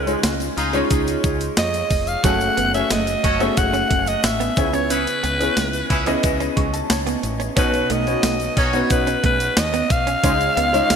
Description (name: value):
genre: 1980s-style pop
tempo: 90 BPM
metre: 4/4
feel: straight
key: unclear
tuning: A4 = 440 Hz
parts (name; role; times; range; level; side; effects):
- breathy alto saxophone; melody; 0.0-11.0 s; B4 to F#5; -21 LUFS; equal; none
- clear concert grand piano; accompaniment; 0.0-11.0 s; B2 to C#6; -23 LUFS; left 1 dB; lush chorus
- woody fretless electric bass; bass; 0.0-11.0 s; E#1 to E#2; -27 LUFS; equal; wide subtle chorus
- clean 12-bit digital drum machine; drums; 0.1-11.0 s; hi-hat, kick drum, snare drum, tambourine; -22 LUFS; equal; none
- egg shaker; percussion; 0.1-11.0 s; none; -36 LUFS; left 9 dB; none
- warm horn section; stabs; 0.6-10.4 s; A3 to A4; -28 LUFS; equal; ping-pong delay
- direct-recorded clean electric guitar; riff; 2.2-11.0 s; F#3 to C#4; -28 LUFS; right 8 dB; lush chorus, ping-pong delay
room: moderate lush hall reverb, RT60 1.9 s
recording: bright 1980s-style digital production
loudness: -17 LUFS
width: side -7 dB against mid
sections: 0.0-11.0 A section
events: grand piano fill 6.2-7.6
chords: 0.0 C#add9; 2.2 F#madd9; 4.6 C#m7; 7.6 Badd9; 10.2 C#add9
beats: 0.23 0.90 1.57 | 2.23 2.90 3.57 4.24 | 4.90 5.57 6.24 6.90 | 7.57 8.23 8.90 9.57 | 10.23 10.90